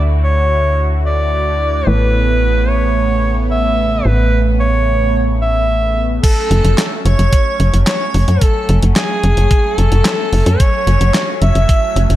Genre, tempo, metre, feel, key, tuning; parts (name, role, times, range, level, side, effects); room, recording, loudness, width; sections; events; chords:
synthwave; 110 BPM; 4/4; straight; F# minor; A4 = 440 Hz
clear alto saxophone; melody; 0.0-12.1 s; G#4 to E5; -18 LUFS; right 1 dB; ping-pong delay
phased analog pad; sustained chords; 0.0-12.2 s; C#3 to F#4; -22 LUFS; right 2 dB; phaser, chorus, sidechain pumping
dark concert grand piano; stabs; 0.0-6.2 s; A2 to E5; -28 LUFS; left 4 dB; vintage 12-bit sampler grit, low-pass filter, ping-pong delay
tight sequencer bass; bass; 0.0-12.2 s; F#1 to F#2; -13 LUFS; equal; tube saturation
airy dreamy lead; second line; 6.2-12.1 s; G#4 to E5; -25 LUFS; equal; chorus, ping-pong delay
detuned 8-bit digital drum machine; drums; 6.2-12.2 s; crash cymbal, handclaps, hi-hat, snare drum; -19 LUFS; equal; gated reverb
electronic kick drum; drums; 6.2-11.8 s; -12 LUFS; equal
light reverb, digital ambience; -11 LUFS; side -14 dB against mid
0.0-6.2 A section; 6.2-12.2 B section
0.0 Dadd9; 1.9 Aadd9; 6.2 F#m